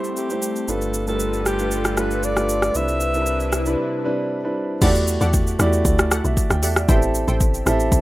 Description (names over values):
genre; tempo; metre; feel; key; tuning
amapiano; 116 BPM; 4/4; straight; E minor; A4 = 439 Hz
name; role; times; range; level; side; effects
warm grand piano; accompaniment; 0.0-8.0 s; G3 to G5; -23 LUFS; right 1 dB; none
airy breathy pad; sustained chords; 0.0-4.8 s; C3 to B4; -29 LUFS; equal; chorus
afro-pop drum kit; drums; 0.0-8.0 s; crash cymbal, hi-hat, kick drum, rim click, shaker; -21 LUFS; equal; none
breathy alto saxophone; melody; 0.2-3.8 s; G4 to E5; -25 LUFS; equal; tape echo
sub bass with octave; bass; 0.7-3.8 s; G1 to C2; -26 LUFS; equal; none
analog pluck; stabs; 4.8-7.4 s; G4 to G5; -30 LUFS; equal; chorus, tape echo
deep log drum bass; bass; 4.8-8.0 s; A1 to E2; -21 LUFS; equal; none
room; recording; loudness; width
light reverb; rough home demo mix; -18 LUFS; side -17 dB against mid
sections
0.0-4.8 A section; 4.8-8.0 B section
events
break 3.8-4.8; drop 4.8-8.0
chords
0.0 Am7; 0.7 G9; 2.7 Cmaj9; 4.8 Em11; 6.9 Am7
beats
0.16 | 0.68 1.20 1.71 2.23 | 2.75 3.27 3.78 4.30 | 4.82 5.33 5.85 6.37 | 6.89 7.40 7.92